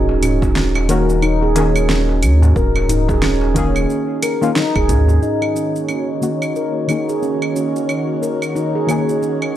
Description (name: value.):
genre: organic downtempo.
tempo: 90 BPM.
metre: 4/4.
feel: swing 59% on 16ths.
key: Eb minor.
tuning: A4 = 440 Hz.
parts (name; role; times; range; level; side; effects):
deep mellow chord stab; accompaniment; 0.0-9.6 s; Eb3 to Ab4; -21 LUFS; left 3 dB; chorus, sidechain pumping, analog delay.
handpan; arpeggios; 0.0-9.3 s; Db4 to Bb4; -20 LUFS; right 2 dB; low-pass filter, analog delay.
warm sub bass; bass; 0.0-5.2 s; Eb1 to Eb2; -16 LUFS; equal; sidechain pumping.
bronze singing bowl; texture; 0.0-9.6 s; Eb4 to Eb5; -27 LUFS; left 1 dB; none.
darbuka; percussion; 0.1-5.2 s; none; -26 LUFS; left 1 dB; none.
deep house drum kit; drums; 0.2-9.5 s; claves, hi-hat, shaker, snare drum; -23 LUFS; right 1 dB; overdrive, studio reverb.
electronic kick drum; drums; 0.4-5.1 s; none; -21 LUFS; equal; overdrive, studio reverb.
airy breathy pad; sustained chords; 5.2-9.6 s; Eb3 to Db5; -24 LUFS; equal; chorus, sidechain pumping.
room: light reverb.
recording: dry, gritty hardware recording.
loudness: -14 LUFS.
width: side -12 dB against mid.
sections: 0.0-5.2 A section; 5.2-9.6 B section.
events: filter sweep on handpan 5.2-9.6; filter sweep on synth stab 5.2-9.6.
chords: 0.0 Ebm7.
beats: 0.56 1.23 1.89 | 2.56 3.23 3.89 4.56 | 5.23 5.89 6.56 7.23 | 7.89 8.56 9.23.